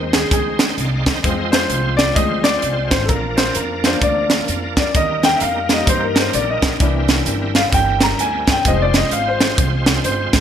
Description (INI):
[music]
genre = uptempo gospel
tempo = 130 BPM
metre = 4/4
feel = swing 61% on 8ths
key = unclear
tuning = A4 = 440 Hz
[part]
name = warm concert grand piano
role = accompaniment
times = 0.0-10.4 s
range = E3 to Bb5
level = -19 LUFS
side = left 2 dB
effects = lush chorus
[part]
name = bright tonewheel organ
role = sustained chords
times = 0.0-10.4 s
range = F3 to F5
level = -25 LUFS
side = right 3 dB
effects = slow rotary speaker, overdrive, chorus vibrato
[part]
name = upright bass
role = bass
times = 0.0-10.4 s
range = F1 to G2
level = -23 LUFS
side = equal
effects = none
[part]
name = crisp fusion drum kit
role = drums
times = 0.1-10.4 s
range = hi-hat, kick drum, snare drum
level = -17 LUFS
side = right 1 dB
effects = gated reverb
[sound]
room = light reverb, small room ambience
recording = bright 1980s-style digital production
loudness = -14 LUFS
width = side -9 dB against mid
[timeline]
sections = 0.0-10.4 A section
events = grand piano solo 0.0-10.4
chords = 0.0 Ab; 1.2 Fm; 3.1 Bb; 4.9 Eb; 6.8 C7; 8.7 Fm